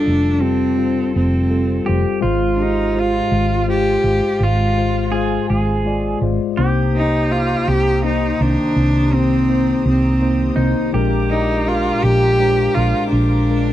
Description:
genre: acoustic folk-pop ballad.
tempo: 55 BPM (dotted quarters).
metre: 6/8.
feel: straight.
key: C minor.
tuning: A4 = 440 Hz.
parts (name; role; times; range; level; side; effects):
rich cello; melody; 0.0-13.7 s; C4 to G4; -19 LUFS; right 1 dB; tape echo.
pedal steel guitar; second line; 0.0-13.7 s; Eb4 to A4; -26 LUFS; right 4 dB; none.
mellow tine electric piano; accompaniment; 0.0-13.7 s; F1 to D5; -21 LUFS; moving between left 9 dB and left 2 dB; auto-pan.
hollow-body short-scale fingered electric bass; bass; 0.1-13.7 s; F1 to C2; -19 LUFS; right 1 dB; none.
warm chamber string section; sustained chords; 6.6-13.7 s; F4 to Eb6; -31 LUFS; equal; none.
room: light reverb.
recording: dry, close 1970s-style studio recording.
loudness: -14 LUFS.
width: side -13 dB against mid.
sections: 0.0-13.7 A section.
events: none.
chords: 0.0 Fadd9; 2.2 Ab6; 6.6 Cm7; 10.9 Bb7.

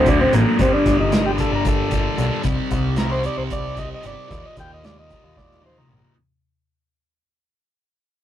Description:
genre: psychedelic rock.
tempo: 226 BPM (eighths).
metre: 7/8.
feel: straight.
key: unclear.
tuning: A4 = 440 Hz.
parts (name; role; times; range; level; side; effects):
combo organ; melody; 0.0-6.1 s; Bb3 to G5; -21 LUFS; equal; none.
tonewheel organ; sustained chords; 0.0-6.1 s; F#3 to Eb4; -31 LUFS; right 1 dB; none.
fuzz guitar; riff; 0.0-6.1 s; D2 to C4; -24 LUFS; left 2 dB; distortion, phaser.
growling picked electric bass; bass; 0.0-6.0 s; G1 to Eb2; -24 LUFS; equal; overdrive.
vintage drum kit; drums; 0.1-6.2 s; hi-hat, kick drum, snare drum, toms; -23 LUFS; equal; none.
room: wet booth ambience, RT60 0.2 s.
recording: rough rehearsal-room recording, tube saturation.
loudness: -17 LUFS.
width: side -11 dB against mid.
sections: 0.0-6.2 A section.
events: fade-out 0.0-6.2; transistor combo organ solo 0.0-6.2; drum fill 5.4-6.2.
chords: 0.0 D; 0.6 Gm; 2.4 Cm; 4.3 Eb.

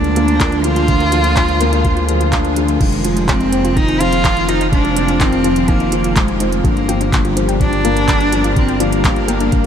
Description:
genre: piano and strings electronica.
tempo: 125 BPM.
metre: 4/4.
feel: straight.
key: F dorian.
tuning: A4 = 440 Hz.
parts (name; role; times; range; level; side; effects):
warm cello; melody; 0.0-9.7 s; Ab3 to F4; -18 LUFS; right 1 dB; analog delay.
lush unison pad; sustained chords; 0.0-9.7 s; D3 to F5; -23 LUFS; equal; chorus, sidechain pumping.
felt-muted upright piano; riff; 0.0-9.7 s; D3 to F4; -19 LUFS; left 2 dB; wide subtle chorus, analog delay.
dark detuned saw bass; bass; 0.0-9.7 s; F1 to D2; -19 LUFS; equal; sidechain pumping.
organic electronic drum kit; drums; 0.0-9.7 s; crash cymbal, handclaps, hi-hat; -24 LUFS; right 1 dB; none.
soft round pluck; arpeggios; 0.2-9.5 s; D4 to Ab5; -28 LUFS; left 2 dB; none.
electronic kick drum; drums; 0.4-9.6 s; none; -17 LUFS; equal; none.
swell; sound effects; 2.0-2.8 s; none; -31 LUFS; equal; none.
room: moderate huge ambient reverb, RT60 7.5 s.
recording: dreamy mix soaked in reverb.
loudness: -12 LUFS.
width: side -8 dB against mid.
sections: 0.0-9.7 A section.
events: swell 2.0-2.8.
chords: 0.0 Bb7/D; 2.8 Fm7; 6.6 Gm7.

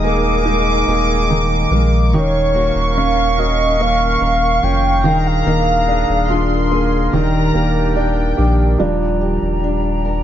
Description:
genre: pop ballad.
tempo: 72 BPM.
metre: 4/4.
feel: straight.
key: Eb major.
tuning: A4 = 441 Hz.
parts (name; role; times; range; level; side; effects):
mellow horn-like synth lead; melody; 0.0-6.9 s; Bb4 to G5; -19 LUFS; equal; chorus, tape echo.
warm studio violin section; second line; 0.0-8.8 s; G5 to D6; -22 LUFS; equal; none.
warm grand piano; accompaniment; 0.0-10.2 s; Eb3 to Bb4; -20 LUFS; right 3 dB; none.
mellow hollow small flute group; sustained chords; 0.0-10.2 s; Db4 to Bb5; -23 LUFS; equal; none.
fingerpicked steel-string acoustic guitar; arpeggios; 0.0-10.2 s; Eb3 to Bb4; -23 LUFS; left 4 dB; tape echo.
warm sub bass; bass; 0.0-10.2 s; Eb1 to Bb1; -18 LUFS; equal; none.
room: light reverb, small room ambience.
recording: dark, warm production, nothing above 7.5 kHz.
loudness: -13 LUFS.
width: side -10 dB against mid.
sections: 0.0-8.8 A section; 8.8-10.2 B section.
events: grand piano solo 8.8-10.2.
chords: 0.0 Absus2/Eb; 2.1 Gbmaj7/Eb; 5.0 Bb7/Eb; 7.1 Ebmaj7.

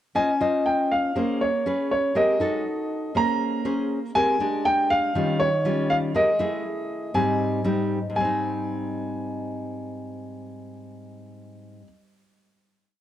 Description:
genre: bossa nova.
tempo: 120 BPM.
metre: 4/4.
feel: straight.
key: Ab major.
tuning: A4 = 441 Hz.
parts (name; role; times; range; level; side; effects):
nylon-string guitar; accompaniment; 0.1-12.0 s; Ab2 to Eb5; -25 LUFS; equal; none.
warm grand piano; melody; 0.2-11.8 s; Db5 to Bb5; -24 LUFS; equal; none.
room: light reverb.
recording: dark, warm production.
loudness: -22 LUFS.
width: side -12 dB against mid.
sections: 0.2-8.1 A section; 8.1-12.1 final chord.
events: none.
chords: 0.2 Dbmaj9; 1.2 Bbm9; 1.7 Abmadd11/Db; 2.2 Abmaj9; 2.7 Ebdim; 3.2 Bbm9; 4.2 Abmaj9; 4.6 Fm69/Ab; 5.1 Eb9; 6.1 Abmaj9; 6.6 Emaj7; 7.1 Abmaj7.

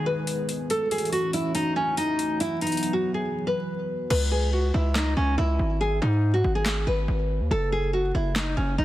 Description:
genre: hip hop, trap.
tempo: 141 BPM.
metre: 4/4.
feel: half-time.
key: G# phrygian.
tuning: A4 = 441 Hz.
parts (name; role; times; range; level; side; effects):
nylon-string guitar; melody; 0.0-8.8 s; C#4 to B4; -26 LUFS; equal; low-pass filter.
warm analog pad; sustained chords; 0.0-4.1 s; D#3 to G#4; -31 LUFS; equal; chorus.
downlifter; sound effects; 0.0-0.7 s; none; -48 LUFS; equal; none.
trap drum kit; drums; 0.3-8.5 s; crash cymbal, handclaps, hi-hat, snare drum; -31 LUFS; left 1 dB; overdrive.
distorted 808-style bass; bass; 4.1-8.8 s; F#1 to G#2; -24 LUFS; equal; distortion.
room: light reverb.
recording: dense, heavily limited modern master, vinyl crackle.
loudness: -22 LUFS.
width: side -14 dB against mid.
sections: 0.0-4.1 A section; 4.1-8.8 B section.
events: break 3.3-4.1; hi-hats muted 4.1-8.8.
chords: 0.0 G#m; 0.7 F#m7; 2.4 Esus2; 4.1 C#m; 5.8 G#m; 7.5 N.C..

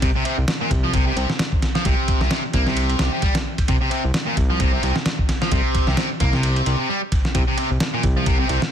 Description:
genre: breakbeat, breaks.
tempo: 131 BPM.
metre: 4/4.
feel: swing 56% on 16ths.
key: unclear.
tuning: A4 = 440 Hz.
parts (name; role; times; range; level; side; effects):
overdriven electric guitar; riff; 0.0-8.6 s; Bb2 to Bb3; -23 LUFS; equal; tube saturation, tape echo.
fat analog bass; bass; 0.0-8.6 s; C2; -22 LUFS; equal; none.
dusty soul sampler-style drum kit; drums; 0.0-8.7 s; kick drum, ride cymbal, snare drum; -20 LUFS; equal; none.
room: little or no reverb.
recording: dense, heavily limited modern master.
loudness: -18 LUFS.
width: side -9 dB against mid.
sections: 0.0-8.7 A section.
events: none.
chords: none.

